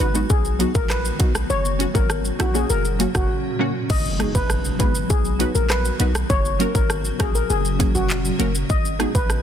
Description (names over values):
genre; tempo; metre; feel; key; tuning
dancehall; 100 BPM; 4/4; straight; unclear; A4 = 439 Hz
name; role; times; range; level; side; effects
steel pan; melody; 0.0-9.4 s; F#4 to D#5; -26 LUFS; left 3 dB; ping-pong delay
punchy chord stab; accompaniment; 0.0-9.1 s; F#3 to B4; -25 LUFS; equal; chorus, sidechain pumping
granular cloud pad; sustained chords; 0.0-9.4 s; A#2 to F#4; -29 LUFS; left 1 dB; built-in reverb, sidechain pumping
warm 808-style bass; bass; 0.0-9.4 s; F#1 to B1; -24 LUFS; equal; none
pop drum kit; drums; 0.0-9.4 s; crash cymbal, handclaps, hi-hat, kick drum, rim click, shaker; -22 LUFS; equal; soft clipping on snare
impact; sound effects; 4.0-6.3 s; none; -34 LUFS; equal; none
room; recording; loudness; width
little or no reverb; dense, heavily limited modern master; -18 LUFS; side -9 dB against mid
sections
0.0-3.9 A section; 3.9-9.4 B section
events
break 3.3-3.9; impact 3.9-6.3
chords
0.3 B; 1.5 F#; 3.9 G#m7; 5.1 B; 6.3 F#; 8.7 G#m7